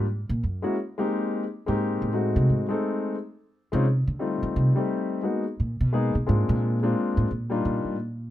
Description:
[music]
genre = jazz piano trio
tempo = 175 BPM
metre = 3/4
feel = swing 64% on 8ths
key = Eb major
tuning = A4 = 440 Hz
[part]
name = warm grand piano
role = melody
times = 0.0-8.0 s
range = G3 to A4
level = -26 LUFS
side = left 2 dB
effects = none
[part]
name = upright bass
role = bass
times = 0.0-8.3 s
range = Gb2 to Eb3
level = -24 LUFS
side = right 1 dB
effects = none
[sound]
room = light reverb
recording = close, detailed microphones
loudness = -23 LUFS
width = side -13 dB against mid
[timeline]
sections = 0.0-7.3 A section; 7.3-8.3 A section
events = upright bass solo 0.0-8.3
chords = 0.1 Gbadd9; 1.1 Abmaj7; 2.1 Ab7b9; 3.2 N.C.; 4.2 F9; 5.2 Abmadd9; 6.3 Bb9; 7.3 Ebmaj9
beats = | 0.07 0.41 0.76 | 1.10 1.45 1.79 | 2.14 2.48 2.83 | 3.17 3.51 3.86 | 4.20 4.54 4.89 | 5.23 5.57 5.92 | 6.26 6.60 6.95 | 7.29 7.63 7.98

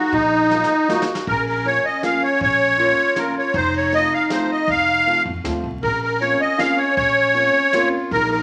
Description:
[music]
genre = musette waltz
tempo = 158 BPM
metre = 3/4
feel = straight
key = Bb harmonic minor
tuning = A4 = 440 Hz
[part]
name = musette accordion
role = melody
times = 0.0-8.4 s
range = Eb4 to F5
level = -20 LUFS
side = equal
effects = none
[part]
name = clear clarinet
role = second line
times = 0.0-8.4 s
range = Db4 to Gb4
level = -27 LUFS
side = equal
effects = none
[part]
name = upright bass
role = bass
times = 0.1-8.4 s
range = F1 to F2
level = -31 LUFS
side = equal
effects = none
[part]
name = vintage brush drum kit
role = drums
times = 0.1-8.4 s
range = hi-hat, kick drum, ride cymbal, snare drum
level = -37 LUFS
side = equal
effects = none
[part]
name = dark upright piano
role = accompaniment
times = 0.5-7.9 s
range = F3 to F4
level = -30 LUFS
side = equal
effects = none
[sound]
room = wet large studio reverb, RT60 1.0 s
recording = vinyl crackle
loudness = -18 LUFS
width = mono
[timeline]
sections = 0.0-1.3 A section; 1.3-8.4 B section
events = drum fill 0.5-1.3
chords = 0.0 Ebmadd9; 1.3 Bbm; 3.5 F; 5.8 Bbmadd9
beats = | 0.12 0.50 0.89 | 1.27 1.65 2.03 | 2.41 2.79 3.16 | 3.54 3.92 4.30 | 4.68 5.06 5.45 | 5.83 6.21 6.59 | 6.97 7.36 7.74 | 8.12

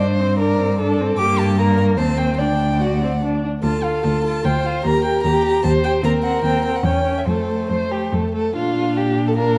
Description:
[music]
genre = quick classical-period movement for string quartet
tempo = 148 BPM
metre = 3/4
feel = rubato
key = Bb major from 3.6 s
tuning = A4 = 440 Hz
[part]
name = dark violin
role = melody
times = 0.0-9.6 s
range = C5 to D6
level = -27 LUFS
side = equal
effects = none
[part]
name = warm violin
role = second line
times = 0.0-9.6 s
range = F4 to D5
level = -25 LUFS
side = equal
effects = none
[part]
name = warm viola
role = accompaniment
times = 0.0-9.6 s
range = A3 to G4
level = -26 LUFS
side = equal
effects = none
[part]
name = rich cello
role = bass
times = 0.0-9.6 s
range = D2 to Bb2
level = -22 LUFS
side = equal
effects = none
[sound]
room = moderate scoring stage reverb, RT60 1.9 s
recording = dark, warm production, vinyl crackle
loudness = -19 LUFS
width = mono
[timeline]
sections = 0.0-8.6 A section; 8.6-9.6 B section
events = none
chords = 0.0 D5/G; 1.2 Gm; 2.0 Cm/Eb; 2.4 D; 3.6 Dm; 4.9 Eb; 6.0 Ebm6; 6.8 Em6; 7.3 F; 8.6 Bb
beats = | 0.00 0.40 0.80 | 1.19 1.59 1.99 | 2.40 2.81 3.22 | 3.63 4.04 4.45 | 4.85 5.25 5.64 | 6.04 6.44 6.85 | 7.27 7.71 8.13 | 8.56 8.97 9.38

